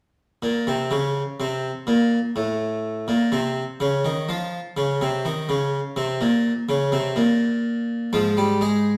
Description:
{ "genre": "classical, baroque-style 4-part fugue for harpsichord", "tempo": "62 BPM", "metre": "4/4", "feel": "straight", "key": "unclear", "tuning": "A4 = 440 Hz", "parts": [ { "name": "harpsichord", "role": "solo", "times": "0.4-9.0 s", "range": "Ab2 to Ab3", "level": "-23 LUFS", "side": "equal", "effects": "none" } ], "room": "wet stone room reverb, RT60 1.0 s", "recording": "heard from further back in the room", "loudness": "-23 LUFS", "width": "mono", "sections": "0.4-9.0 A section", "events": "none", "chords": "0.4 N.C.; 8.1 Fm/Ab", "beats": "| 0.43 1.40 2.36 3.32 | 4.29 5.25 6.21 7.17 | 8.13" }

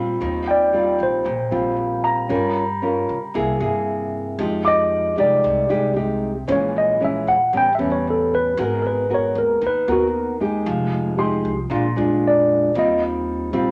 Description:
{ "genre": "bossa nova", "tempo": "115 BPM", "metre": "4/4", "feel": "straight", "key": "Eb major", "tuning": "A4 = 441 Hz", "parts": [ { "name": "nylon-string guitar", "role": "accompaniment", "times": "0.0-13.7 s", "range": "A2 to Bb4", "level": "-24 LUFS", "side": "equal", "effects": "none" }, { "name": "upright bass", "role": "bass", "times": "0.0-13.7 s", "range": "F1 to Db3", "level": "-32 LUFS", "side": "equal", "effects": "none" }, { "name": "mellow tine electric piano", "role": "melody", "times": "0.5-13.0 s", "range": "Gb4 to G5", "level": "-21 LUFS", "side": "equal", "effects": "none" }, { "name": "warm concert grand piano", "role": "accompaniment", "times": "0.5-6.5, 11.2-11.9 s", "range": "G5 to D6", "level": "-29 LUFS", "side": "equal", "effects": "none" } ], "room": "light reverb", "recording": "none", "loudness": "-20 LUFS", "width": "mono", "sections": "0.2-13.7 A section", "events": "tine electric piano solo 0.2-13.7", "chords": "0.2 Eb69; 2.3 Gm7b5; 3.3 C7b13; 4.4 Fm9; 6.5 Bbm7b5; 7.5 A9; 8.6 Abm9; 10.7 Fm9; 11.7 Bb7; 12.7 Eb69", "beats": "| 0.21 0.73 1.26 1.78 | 2.30 2.82 3.35 3.87 | 4.39 4.91 5.43 5.96 | 6.48 7.00 7.52 8.05 | 8.57 9.09 9.61 10.13 | 10.66 11.18 11.70 12.22 | 12.74 13.27" }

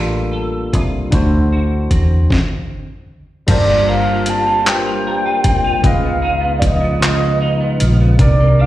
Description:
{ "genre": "slow six-eight R&B", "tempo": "51 BPM (dotted quarters)", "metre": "6/8", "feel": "straight", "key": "unclear", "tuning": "A4 = 443 Hz", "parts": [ { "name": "semi-hollow electric guitar", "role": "second line", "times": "0.0-8.7 s", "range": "C3 to Bb4", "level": "-22 LUFS", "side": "right 3 dB", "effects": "ensemble chorus, slapback echo" }, { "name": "barky tine electric piano", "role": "accompaniment", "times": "0.0-8.7 s", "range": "C3 to A5", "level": "-22 LUFS", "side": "left 2 dB", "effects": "wide subtle chorus, slapback echo" }, { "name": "vintage muted fingered electric bass", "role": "bass", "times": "0.0-8.7 s", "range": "G1 to E2", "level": "-16 LUFS", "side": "equal", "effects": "none" }, { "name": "dusty soul sampler-style drum kit", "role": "drums", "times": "0.7-8.4 s", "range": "crash cymbal, handclaps, hi-hat, kick drum, snare drum", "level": "-17 LUFS", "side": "equal", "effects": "overdrive" }, { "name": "mellow horn-like synth lead", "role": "melody", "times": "3.5-8.7 s", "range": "D5 to A5", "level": "-17 LUFS", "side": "right 1 dB", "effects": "chorus, slapback echo" }, { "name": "tonewheel organ", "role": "sustained chords", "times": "3.5-8.7 s", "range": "C3 to F4", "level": "-25 LUFS", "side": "left 1 dB", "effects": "chorus vibrato, slow rotary speaker" } ], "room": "light reverb", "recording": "live gig heard through the venue's PA, recital hall reverb", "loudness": "-13 LUFS", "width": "side -14 dB against mid", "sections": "0.0-3.5 A section; 3.5-8.7 B section", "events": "stop 2.3-3.5", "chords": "0.0 Gm9; 1.1 D7; 3.5 Gm11; 5.8 C#9", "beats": "| 1.13 2.31 | 3.48 4.66 | 5.84 7.01 | 8.19" }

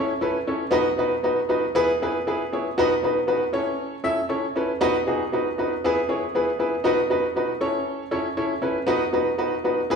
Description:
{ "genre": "soul", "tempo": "118 BPM", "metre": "4/4", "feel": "straight", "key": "unclear", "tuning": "A4 = 440 Hz", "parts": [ { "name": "warm upright piano", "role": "solo", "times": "0.0-10.0 s", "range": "B3 to E5", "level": "-21 LUFS", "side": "equal", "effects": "none" } ], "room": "wet large studio reverb, RT60 1.2 s", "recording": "band playing live in one room", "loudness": "-21 LUFS", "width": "side -6 dB against mid", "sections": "0.0-10.0 A section", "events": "none", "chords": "0.0 A; 0.7 B; 1.8 E; 2.8 B; 3.5 A; 4.8 B; 5.8 E; 6.9 B; 7.6 A; 8.9 B", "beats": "0.23 0.74 1.25 | 1.76 2.27 2.78 3.29 | 3.80 4.31 4.82 5.33 | 5.84 6.35 6.86 7.37 | 7.88 8.38 8.89 9.41 | 9.92" }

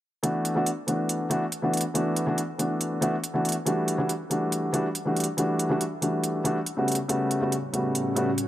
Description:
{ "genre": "future bass", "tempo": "140 BPM", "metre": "4/4", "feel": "half-time", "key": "D major", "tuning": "A4 = 440 Hz", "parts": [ { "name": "dark baby grand piano", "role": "accompaniment", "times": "0.2-8.3 s", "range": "C#3 to F#4", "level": "-24 LUFS", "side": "equal", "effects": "tape echo" }, { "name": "electronic hi-hat", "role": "drums", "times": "0.2-8.5 s", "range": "none", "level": "-30 LUFS", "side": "right 2 dB", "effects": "small room ambience" }, { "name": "ethereal airy pad", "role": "sustained chords", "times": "7.7-8.5 s", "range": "A2 to F#4", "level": "-32 LUFS", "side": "equal", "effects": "ensemble chorus, built-in reverb" } ], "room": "light reverb, small room ambience", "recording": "none", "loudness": "-24 LUFS", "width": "side -13 dB against mid", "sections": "0.2-8.5 A section", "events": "none", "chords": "0.2 D69; 3.7 Em11; 6.9 A13", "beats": "| 0.24 0.67 1.09 1.52 | 1.95 2.38 2.81 3.24 | 3.67 4.09 4.52 4.95 | 5.38 5.81 6.24 6.67 | 7.09 7.52 7.95 8.38" }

